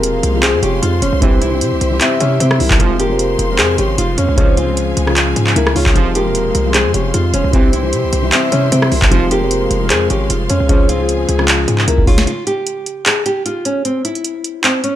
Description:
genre	hip hop, trap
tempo	152 BPM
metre	4/4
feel	half-time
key	F harmonic minor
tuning	A4 = 440 Hz
part	nylon-string guitar	melody	0.0-15.0 s	C4 to Ab4	-19 LUFS	equal	low-pass filter
part	soft octave-layered synth lead	second line	0.0-12.3 s	Bb4 to E5	-22 LUFS	left 4 dB	chorus, ping-pong delay
part	felt-muted upright piano	accompaniment	0.0-12.3 s	C3 to C5	-20 LUFS	left 2 dB	low-pass filter
part	clear symphonic string section	sustained chords	0.0-12.3 s	Ab3 to C6	-26 LUFS	equal	none
part	hard-hitting 808-style bass	bass	0.0-12.3 s	E1 to C3	-17 LUFS	equal	none
part	booming analog drum machine	drums	0.0-14.9 s	handclaps, hi-hat, kick drum, rim click, snare drum	-15 LUFS	equal	overdrive
part	bright brass ensemble	stabs	1.2-11.0 s	C2 to F3	-25 LUFS	right 6 dB	none
room	light reverb, studio ambience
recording	none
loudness	-12 LUFS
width	side -12 dB against mid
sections	0.0-12.3 A section; 12.3-15.0 B section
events	drum fill 11.9-12.3; break 12.3-15.0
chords	0.0 Fm; 1.2 C; 2.8 Fm; 4.4 Db; 6.0 Fm; 7.5 C; 9.1 Fm; 10.7 Db; 12.3 N.C.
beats	0.04 0.43 0.82 | 1.22 1.61 2.01 2.40 | 2.80 3.19 3.59 3.98 | 4.38 4.77 5.17 5.56 | 5.96 6.35 6.75 7.14 | 7.54 7.93 8.32 8.72 | 9.11 9.51 9.90 10.30 | 10.69 11.09 11.48 11.88 | 12.27 12.67 13.06 13.46 | 13.85 14.24 14.64

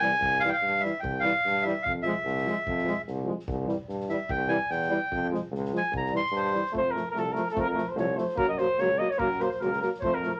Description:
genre	balkan folk, Balkan brass band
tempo	147 BPM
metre	2/4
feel	swing 56% on 16ths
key	F phrygian dominant from 6.7 s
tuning	A4 = 440 Hz
part	melodica	second line	0.0-6.7, 9.2-10.4 s	Bb4 to C6	-30 LUFS	equal	none
part	clear French horn	accompaniment	0.0-10.3 s	G3 to Bb3	-37 LUFS	equal	none
part	dark euphonium	accompaniment	0.0-10.3 s	E3 to Gb3	-34 LUFS	equal	none
part	warm tuba	bass	0.0-10.3 s	C2 to G2	-35 LUFS	equal	none
part	soft-mallet drum kit	percussion	0.0-10.3 s	kick drum, snare drum	-46 LUFS	equal	none
part	warm flugelhorn	melody	6.8-10.4 s	A4 to Eb5	-30 LUFS	equal	none
room	moderate small room reverb, RT60 0.5 s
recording	none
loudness	-28 LUFS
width	mono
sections	0.0-6.7 A section; 6.7-10.4 B section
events	melodica solo 0.0-6.7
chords	0.0 C; 1.9 Fm; 3.5 C; 5.1 Fm; 5.9 C; 6.7 F; 8.4 Gb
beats	| 0.22 0.63 | 1.04 1.45 | 1.85 2.26 | 2.67 3.08 | 3.48 3.89 | 4.30 4.71 | 5.11 5.52 | 5.93 6.34 | 6.74 7.15 | 7.56 7.97 | 8.38 8.79 | 9.20 9.61 | 10.02

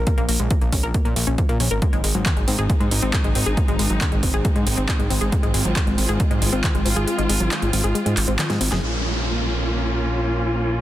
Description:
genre	uplifting trance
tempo	137 BPM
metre	4/4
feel	straight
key	unclear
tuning	A4 = 439 Hz
part	fat analog bass	bass	0.0-10.8 s	Gb1 to Bb2	-23 LUFS	equal	sidechain pumping
part	wide unison pluck	arpeggios	0.1-8.8 s	Ab2 to Bb4	-26 LUFS	left 2 dB	sidechain pumping, digital delay
part	big-room dance drum kit	drums	0.1-8.8 s	handclaps, hi-hat, snare drum	-26 LUFS	right 1 dB	overdrive, sidechain pumping on hats
part	electronic kick drum	drums	0.1-6.7 s	none	-21 LUFS	equal	none
part	warm studio string section	sustained chords	1.8-10.8 s	Ab3 to F4	-26 LUFS	equal	sidechain pumping, low-pass filter
part	downlifter	sound effects	8.8-10.8 s	none	-27 LUFS	equal	none
room	digital ambience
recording	dense, heavily limited modern master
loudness	-18 LUFS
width	side -14 dB against mid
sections	0.0-8.8 A section; 8.8-10.8 B section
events	kick drops out 7.1-8.8; drum fill 8.4-8.8; band accent 8.7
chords	0.0 N.C.; 1.8 Ab; 8.8 Bbm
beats	| 0.07 0.51 0.94 1.38 | 1.82 2.26 2.70 3.13 | 3.57 4.01 4.45 4.89 | 5.32 5.76 6.20 6.64 | 7.08 7.51 7.95 8.39 | 8.83 9.27 9.70 10.14 | 10.58

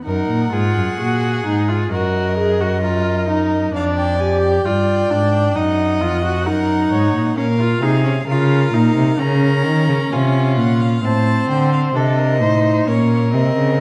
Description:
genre	classical, baroque-style fugue for string quartet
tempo	66 BPM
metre	4/4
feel	straight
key	Eb minor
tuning	A4 = 441 Hz
part	warm viola	accompaniment	0.0-13.8 s	C4 to Ab4	-23 LUFS	equal	none
part	rich violin	melody	0.1-13.8 s	Db5 to Bb5	-28 LUFS	equal	none
part	warm violin	second line	0.1-13.8 s	F4 to Eb5	-25 LUFS	equal	none
part	rich cello	bass	0.1-13.8 s	F2 to Eb3	-20 LUFS	equal	none
room	moderate recital hall reverb, RT60 1.4 s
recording	dark, warm production, vinyl crackle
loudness	-17 LUFS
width	mono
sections	0.1-13.8 A section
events	none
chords	0.1 Ebm/Gb; 3.7 Ddim/F; 5.6 Ebm; 7.4 Bbm; 9.2 Bbm/Db; 11.0 Adim; 12.9 Bbm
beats	| 0.07 0.99 1.92 2.83 | 3.75 4.66 5.56 6.47 | 7.37 8.28 9.20 10.12 | 11.03 11.95 12.87 13.80

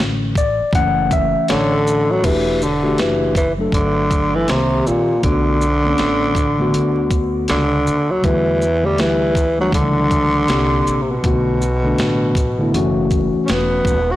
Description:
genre	hip hop, jazz-hop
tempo	80 BPM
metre	4/4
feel	swing 62% on 16ths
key	B minor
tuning	A4 = 440 Hz
part	mellow tine electric piano	accompaniment	0.0-14.0 s	C3 to F#5	-19 LUFS	left 2 dB	none
part	upright bass	bass	0.0-14.2 s	D#1 to E2	-23 LUFS	equal	transformer saturation
part	boom bap sampler-style drum kit	drums	0.0-14.1 s	crash cymbal, hi-hat, kick drum, shaker, snare drum	-21 LUFS	equal	none
part	growling tenor saxophone	melody	1.5-14.2 s	Bb2 to F#4	-17 LUFS	equal	analog delay
room	light reverb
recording	blown-out, overdriven recording, vinyl crackle, overdrive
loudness	-14 LUFS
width	side -14 dB against mid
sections	0.0-2.2 A section; 2.2-14.2 B section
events	tine electric piano solo 0.0-2.2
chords	0.0 Bm7 (rootless); 0.7 F#m7; 2.2 Em11; 4.5 Cm7; 5.2 Bm7; 8.2 Em11; 10.5 C5; 11.2 Bm7; 12.7 F#m7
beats	0.74 1.49 | 2.24 2.99 3.74 4.49 | 5.24 5.99 6.74 7.49 | 8.24 8.99 9.74 10.49 | 11.24 11.99 12.74 13.49

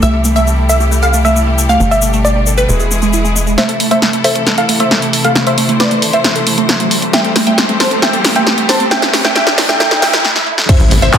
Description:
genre	uplifting trance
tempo	135 BPM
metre	4/4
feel	straight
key	A minor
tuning	A4 = 444 Hz
part	wide unison pluck	melody	0.0-11.2 s	A4 to A5	-15 LUFS	equal	cassette tape, sidechain pumping, tape echo
part	bright symphonic string section	sustained chords	0.0-11.2 s	B2 to C5	-19 LUFS	left 2 dB	sidechain pumping
part	wide unison pluck	arpeggios	0.0-10.6 s	G#3 to A4	-18 LUFS	right 3 dB	phaser, sidechain pumping, dub echo
part	tight sequencer bass	bass	0.0-3.6, 10.8-11.1 s	E1 to C2	-14 LUFS	equal	sidechain pumping
part	tube shaker	percussion	0.0-3.6 s	none	-20 LUFS	left 5 dB	none
part	big-room dance drum kit	drums	3.6-11.2 s	crash cymbal, handclaps, hi-hat, snare drum	-13 LUFS	equal	soft clipping on snare
part	riser and impact	sound effects	4.8-11.2 s	none	-20 LUFS	equal	none
part	electronic kick drum	drums	10.7-11.2 s	none	-10 LUFS	equal	none
room	moderate digital room reverb, RT60 1.1 s, digital ambience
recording	dense, heavily limited modern master, high-pass filter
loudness	-9 LUFS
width	side -8 dB against mid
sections	0.0-3.6 A section; 3.6-10.7 B section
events	build-up 3.6-10.7; drum fill 3.6-10.2, 10.2-10.7; filter sweep on synth pluck 3.6-10.7; riser 4.8-10.2; break 10.2-10.7; impact 10.7-11.2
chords	0.0 C; 1.8 G; 2.7 E; 3.6 Am; 7.1 C; 8.9 G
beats	| 0.02 0.47 0.91 1.36 | 1.80 2.25 2.69 3.13 | 3.58 4.02 4.47 4.91 | 5.36 5.80 6.25 6.69 | 7.13 7.58 8.02 8.47 | 8.91 9.36 9.80 10.25 | 10.69 11.13

